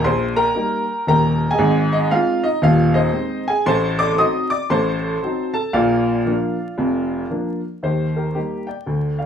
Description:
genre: jazz, stride piano.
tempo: 115 BPM.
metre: 4/4.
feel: swing 62% on 8ths.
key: Eb major.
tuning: A4 = 440 Hz.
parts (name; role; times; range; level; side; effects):
clear upright piano; solo; 0.0-9.3 s; Eb1 to Eb6; -17 LUFS; equal; none.
room: wet studio reverb, RT60 0.5 s.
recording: band playing live in one room, vinyl crackle.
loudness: -17 LUFS.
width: side -8 dB against mid.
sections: 0.0-7.8 A section; 7.8-9.3 B section.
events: none.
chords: 0.0 Eb; 1.6 Ab; 3.7 Adim7; 5.8 Bb; 7.8 Eb.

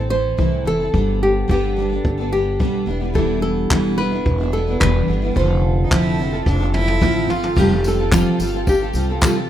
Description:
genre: acoustic pop.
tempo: 109 BPM.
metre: 4/4.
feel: straight.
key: unclear.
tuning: A4 = 438 Hz.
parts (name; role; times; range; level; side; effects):
nylon-string guitar; melody; 0.0-9.5 s; F4 to C5; -22 LUFS; equal; tape echo.
picked steel-string acoustic guitar; accompaniment; 0.0-9.5 s; E2 to A4; -21 LUFS; equal; double-tracked left and right.
upright bass; bass; 0.0-9.5 s; E1 to C2; -22 LUFS; equal; none.
jazz brush drum kit; drums; 0.4-9.4 s; crash cymbal, handclaps, kick drum, snare drum, tambourine, toms; -20 LUFS; equal; none.
bright cello; second line; 5.8-7.6 s; D4 to F4; -24 LUFS; right 1 dB; none.
warm studio string section; sustained chords; 7.5-9.5 s; G4 to A5; -35 LUFS; left 4 dB; none.
tambourine; percussion; 7.6-9.3 s; none; -36 LUFS; left 4 dB; none.
room: little or no reverb.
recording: rough home demo mix.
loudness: -16 LUFS.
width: side -11 dB against mid.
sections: 0.0-7.6 A section; 7.6-9.5 B section.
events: drum fill 6.5-7.6.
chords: 0.0 Am; 0.9 Gadd9; 2.9 Em7; 5.4 Dm7/F; 7.6 Fadd9.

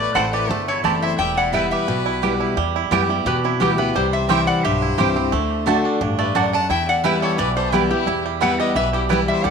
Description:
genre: bluegrass.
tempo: 175 BPM.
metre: 4/4.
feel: straight.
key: E minor.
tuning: A4 = 440 Hz.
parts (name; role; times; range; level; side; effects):
lap resonator guitar; melody; 0.0-9.5 s; E4 to A5; -23 LUFS; left 2 dB; none.
clear fiddle; second line; 0.0-9.5 s; C4 to F#5; -28 LUFS; left 12 dB; none.
picked steel-string acoustic guitar; accompaniment; 0.0-9.5 s; E2 to F#4; -22 LUFS; left 2 dB; none.
bluegrass banjo; arpeggios; 0.0-9.5 s; E3 to G4; -24 LUFS; right 11 dB; tape echo.
upright bass; bass; 0.0-9.5 s; E1 to F#2; -27 LUFS; left 1 dB; none.
mandolin; stabs; 0.1-9.2 s; A3 to A5; -25 LUFS; right 10 dB; none.
room: moderate echo chamber reverb, RT60 1.7 s, studio reverb.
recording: 1960s-style stereo with parts hard left and right.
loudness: -17 LUFS.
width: side -6 dB against mid.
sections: 0.0-2.6 A section; 2.6-9.5 B section.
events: none.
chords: 0.0 Am; 1.2 Em; 4.0 C; 5.3 D; 6.7 Em.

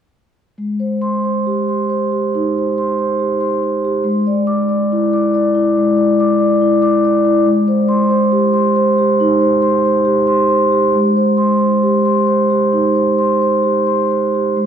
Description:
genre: classical, contemporary piece for solo vibraphone.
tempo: 69 BPM.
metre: 4/4.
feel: rubato.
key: Ab lydian.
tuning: A4 = 441 Hz.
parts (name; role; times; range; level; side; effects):
vibraphone with soft mallets; solo; 0.6-14.7 s; Ab3 to D6; -12 LUFS; equal; none.
room: wet church reverb, RT60 3.9 s.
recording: dark, warm production.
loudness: -12 LUFS.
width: side -8 dB against mid.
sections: 0.6-14.6 A section.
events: none.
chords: 0.6 Abmaj7; 4.0 E7/G#; 7.5 Abmaj7.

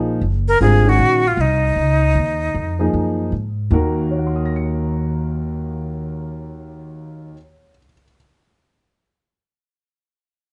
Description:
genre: modal jazz.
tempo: 155 BPM.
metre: 4/4.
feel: swing 64% on 8ths.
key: Eb dorian.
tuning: A4 = 440 Hz.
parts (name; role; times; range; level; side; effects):
warm concert grand piano; accompaniment; 0.0-8.1 s; Eb2 to Db7; -25 LUFS; equal; none.
upright bass; bass; 0.0-7.3 s; Gb1 to Ab2; -22 LUFS; equal; none.
breathy bright jazz flute; melody; 0.5-3.3 s; Eb4 to Bb4; -20 LUFS; equal; plate reverb.
room: light reverb.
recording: dark, warm production, nothing above 10.7 kHz.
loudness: -18 LUFS.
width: mono.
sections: 0.0-3.7 A section; 3.7-6.8 B section.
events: none.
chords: 0.0 Ab9sus4; 3.7 Ebm.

